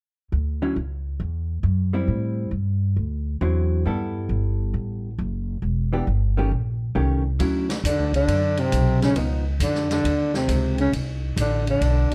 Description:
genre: jazz, small-group swing and bop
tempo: 136 BPM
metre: 4/4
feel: swing 67% on 8ths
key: D major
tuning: A4 = 441 Hz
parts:
  - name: upright bass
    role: bass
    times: 0.3-12.1 s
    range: E1 to A2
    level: -25 LUFS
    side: equal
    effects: none
  - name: vintage hollow-body jazz guitar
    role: accompaniment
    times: 0.6-9.4 s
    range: D3 to A4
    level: -29 LUFS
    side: equal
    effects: none
  - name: open jazz drum kit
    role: drums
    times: 7.4-12.1 s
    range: hi-hat, kick drum, ride cymbal, snare drum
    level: -33 LUFS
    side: equal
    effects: none
  - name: breathy tenor saxophone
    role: melody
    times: 7.9-12.1 s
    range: C4 to D4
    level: -27 LUFS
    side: equal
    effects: none
  - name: breathy baritone saxophone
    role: second line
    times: 7.9-12.1 s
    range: B2 to D3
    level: -28 LUFS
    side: equal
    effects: none
room: light reverb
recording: none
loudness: -23 LUFS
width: mono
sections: 0.3-7.4 A section; 7.4-12.1 B section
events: none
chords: 0.3 Dmaj9; 2.1 Am7; 3.0 D9; 3.8 G69; 5.6 Em7; 6.5 Eb7#11; 7.4 Dmaj9; 9.2 C#9; 10.9 Cmaj7sus2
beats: | 0.30 0.74 1.19 1.63 | 2.08 2.52 2.96 3.40 | 3.85 4.29 4.73 5.17 | 5.62 6.06 6.50 6.95 | 7.39 7.83 8.27 8.71 | 9.16 9.60 10.04 10.48 | 10.92 11.37 11.81

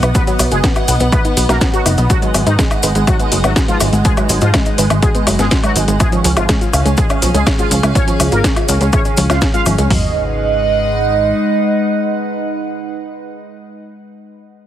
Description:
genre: melodic techno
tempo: 123 BPM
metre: 4/4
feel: straight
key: G# dorian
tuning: A4 = 440 Hz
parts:
  - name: resonant sweep polysynth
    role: melody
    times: 0.0-13.5 s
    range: D#3 to E#5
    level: -19 LUFS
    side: right 3 dB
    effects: chorus, sidechain pumping, ping-pong delay
  - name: evolving wavetable pad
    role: sustained chords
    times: 0.0-13.5 s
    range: C#3 to F#5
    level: -21 LUFS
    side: left 1 dB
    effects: phaser, built-in reverb, sidechain pumping
  - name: woody wave-folded pluck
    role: arpeggios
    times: 0.0-10.1 s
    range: E#3 to F#5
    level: -21 LUFS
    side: equal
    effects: chorus, sidechain pumping, ping-pong delay
  - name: plucky analog bass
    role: bass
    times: 0.0-11.3 s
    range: F#1 to G#2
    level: -16 LUFS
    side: equal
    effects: sidechain pumping
  - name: techno drum kit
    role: drums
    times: 0.0-9.9 s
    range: hi-hat, snare drum, woodblock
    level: -19 LUFS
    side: left 1 dB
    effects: none
  - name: cabasa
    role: percussion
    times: 0.0-9.9 s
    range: none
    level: -25 LUFS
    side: left 2 dB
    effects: none
  - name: techno drum kit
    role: drums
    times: 0.1-10.0 s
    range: hi-hat, kick drum, toms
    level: -16 LUFS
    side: equal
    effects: none
room: light reverb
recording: heavily compressed radio sound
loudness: -12 LUFS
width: side -11 dB against mid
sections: 0.0-9.9 A section; 9.9-13.8 B section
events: drop 0.0-9.9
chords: 0.0 B; 2.1 G#m7; 6.0 C#; 9.9 G#m7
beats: | 0.15 0.64 1.12 1.61 | 2.10 2.59 3.08 3.56 | 4.05 4.54 5.03 5.51 | 6.00 6.49 6.98 7.47 | 7.95 8.44 8.93 9.42 | 9.90 10.39 10.88 11.37 | 11.86 12.34 12.83 13.32

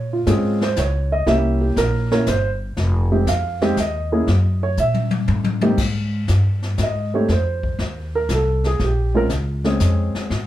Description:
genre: jazz piano trio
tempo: 120 BPM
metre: 3/4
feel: swing 69% on 8ths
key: unclear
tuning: A4 = 440 Hz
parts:
  - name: dark baby grand piano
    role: melody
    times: 0.0-10.3 s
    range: Ab2 to F5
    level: -20 LUFS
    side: right 1 dB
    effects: none
  - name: upright bass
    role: bass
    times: 0.0-10.5 s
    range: F1 to Bb2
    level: -20 LUFS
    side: equal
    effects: none
  - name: jazz brush drum kit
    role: drums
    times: 0.3-10.5 s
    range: brushed snare drum, crash cymbal, hi-hat, kick drum, snare drum, toms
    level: -26 LUFS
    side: left 4 dB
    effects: none
room: moderate studio reverb, RT60 0.6 s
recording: heard from further back in the room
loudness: -17 LUFS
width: side -13 dB against mid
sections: 0.0-5.8 A section; 5.8-10.5 B section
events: drum fill 4.8-5.8; grand piano solo 5.8-10.5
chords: 0.0 Bbm9; 1.3 C7b9; 2.8 Fm7; 4.3 Gb7; 5.8 Abmaj7(no3); 7.3 F5; 8.8 Bbm9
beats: 0.27 0.77 | 1.27 1.77 2.27 | 2.77 3.27 3.77 | 4.28 4.78 5.28 | 5.78 6.29 6.79 | 7.29 7.79 8.29 | 8.80 9.30 9.80 | 10.30

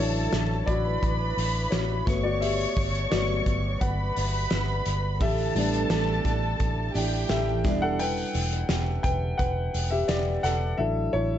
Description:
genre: piano-driven pop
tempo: 86 BPM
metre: 4/4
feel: straight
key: unclear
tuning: A4 = 444 Hz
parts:
  - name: dark studio violin section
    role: second line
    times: 0.0-7.6 s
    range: G4 to C#6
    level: -31 LUFS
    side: right 1 dB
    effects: none
  - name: dark upright piano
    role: accompaniment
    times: 0.0-11.4 s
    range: E3 to G5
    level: -29 LUFS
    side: left 3 dB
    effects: none
  - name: vintage muted fingered electric bass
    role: bass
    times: 0.0-11.4 s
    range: E1 to A1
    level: -28 LUFS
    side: equal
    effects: none
  - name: loose indie drum kit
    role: drums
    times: 0.3-10.6 s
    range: hi-hat, kick drum, snare drum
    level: -30 LUFS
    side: equal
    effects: none
  - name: picked steel-string acoustic guitar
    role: riff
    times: 5.2-8.0 s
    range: A2 to G4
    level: -31 LUFS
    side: right 7 dB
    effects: none
room: small room ambience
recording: dark, warm production, nothing above 7.9 kHz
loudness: -24 LUFS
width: side -10 dB against mid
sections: 0.0-11.4 A section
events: upright piano solo 0.0-11.4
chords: 0.0 Dadd9/A; 2.1 Gmaj7; 5.2 A7sus4; 7.6 Em7; 10.8 Dadd9/A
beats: 0.33 1.03 1.72 | 2.42 3.12 3.81 4.51 | 5.21 5.91 6.60 7.30 | 8.00 8.70 9.39 10.09 | 10.79

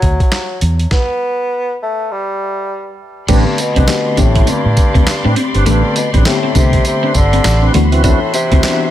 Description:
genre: R&B, new jack swing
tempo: 101 BPM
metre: 4/4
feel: swing 61% on 16ths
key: A dorian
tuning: A4 = 440 Hz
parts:
  - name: warm bassoon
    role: melody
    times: 0.0-8.9 s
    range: G2 to B3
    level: -18 LUFS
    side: equal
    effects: digital delay
  - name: vintage muted fingered electric bass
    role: bass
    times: 0.0-8.6 s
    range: G1 to A2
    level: -14 LUFS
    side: equal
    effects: none
  - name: boom bap sampler-style drum kit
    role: drums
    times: 0.0-8.8 s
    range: crash cymbal, handclaps, hi-hat, kick drum, snare drum, tambourine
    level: -14 LUFS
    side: equal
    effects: none
  - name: FM electric piano with tremolo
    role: accompaniment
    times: 3.3-8.9 s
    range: D3 to A4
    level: -20 LUFS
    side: left 6 dB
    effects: none
  - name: muted studio string section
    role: sustained chords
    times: 3.3-8.9 s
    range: F#4 to C6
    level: -23 LUFS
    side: equal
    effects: none
  - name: clean electric guitar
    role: riff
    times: 3.3-8.7 s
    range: A3 to E4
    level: -21 LUFS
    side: equal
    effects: ensemble chorus
  - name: tonewheel organ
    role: stabs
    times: 3.3-8.6 s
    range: C4 to B4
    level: -21 LUFS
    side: right 2 dB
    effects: overdrive, chorus vibrato, slow rotary speaker
room: little or no reverb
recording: none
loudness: -11 LUFS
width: side -12 dB against mid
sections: 0.0-3.3 A section; 3.3-8.9 B section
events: stop 0.9-3.3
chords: 0.0 Bm (rootless); 0.6 Em; 3.3 Am11; 7.7 D13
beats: 0.32 | 0.91 1.50 2.10 2.69 | 3.29 3.88 4.47 5.07 | 5.66 6.26 6.85 7.45 | 8.04 8.63

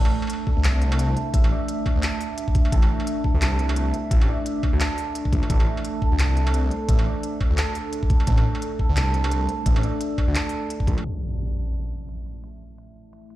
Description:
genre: half-time drum and bass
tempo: 173 BPM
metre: 4/4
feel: swing 58% on 16ths, half-time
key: A minor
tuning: A4 = 440 Hz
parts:
  - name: dark analog pad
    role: sustained chords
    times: 0.0-13.4 s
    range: A3 to E5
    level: -30 LUFS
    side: right 1 dB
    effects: chorus, phaser, sidechain pumping
  - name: santur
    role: arpeggios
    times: 0.0-12.3 s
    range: A4 to A5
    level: -33 LUFS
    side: right 4 dB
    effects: tape echo
  - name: phased detuned saw bass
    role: bass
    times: 0.0-11.0 s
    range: A1 to D2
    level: -21 LUFS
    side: equal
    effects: phaser
  - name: industrial drum kit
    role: drums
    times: 0.1-13.4 s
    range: handclaps, hi-hat, struck metal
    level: -31 LUFS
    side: equal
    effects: none
  - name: electronic kick drum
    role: drums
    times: 0.5-11.0 s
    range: none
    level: -21 LUFS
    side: equal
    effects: none
  - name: impact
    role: sound effects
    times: 11.0-12.4 s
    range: none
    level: -29 LUFS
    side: equal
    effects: none
room: little or no reverb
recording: played on a big sound system in a bare room, large studio reverb, low-pass filter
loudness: -20 LUFS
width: side -15 dB against mid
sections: 0.0-11.0 A section; 11.0-13.4 B section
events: drop 0.0-11.0; impact 11.0-12.4; filter sweep on analog synth pad 11.0-13.4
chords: 0.0 A5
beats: 0.30 0.64 0.99 | 1.34 1.68 2.03 2.38 | 2.72 3.07 3.42 3.76 | 4.11 4.46 4.80 5.15 | 5.50 5.84 6.19 6.54 | 6.89 7.23 7.58 7.93 | 8.27 8.62 8.97 9.31 | 9.66 10.01 10.35 10.70 | 11.05 11.39 11.74 12.09 | 12.44 12.78 13.13

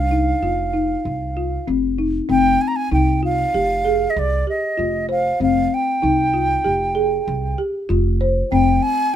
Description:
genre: contemporary instrumental, chamber music in an uneven meter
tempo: 96 BPM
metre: 5/4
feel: straight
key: F dorian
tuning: A4 = 443 Hz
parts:
  - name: bright baroque flute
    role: melody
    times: 0.0-9.2 s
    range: D5 to Bb5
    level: -20 LUFS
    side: right 2 dB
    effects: none
  - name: folk marimba with soft mallets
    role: arpeggios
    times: 0.0-9.0 s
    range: C4 to C5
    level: -20 LUFS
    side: left 3 dB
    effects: none
  - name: upright bass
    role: bass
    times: 0.0-8.8 s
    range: F1 to C2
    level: -22 LUFS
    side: right 1 dB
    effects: none
room: light reverb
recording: none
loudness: -17 LUFS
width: side -10 dB against mid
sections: 0.0-2.3 A section; 2.3-9.2 B section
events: none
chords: 0.0 F5; 2.3 Fmadd9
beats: 0.42 1.05 1.67 | 2.29 2.92 3.54 4.16 4.78 | 5.41 6.03 6.65 7.27 7.89 | 8.52 9.14

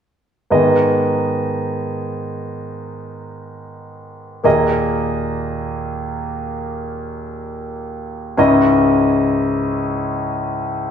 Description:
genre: pop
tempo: free time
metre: none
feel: none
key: G# minor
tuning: A4 = 438 Hz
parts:
  - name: warm concert grand piano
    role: accompaniment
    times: 0.5-10.9 s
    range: C#2 to D#5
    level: -17 LUFS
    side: equal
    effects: none
room: wet stone room reverb, RT60 1.3 s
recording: band playing live in one room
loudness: -16 LUFS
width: side -8 dB against mid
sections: 0.5-10.9 A section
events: none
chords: 0.5 G#m; 4.5 D#sus4; 8.4 C#madd9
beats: free time

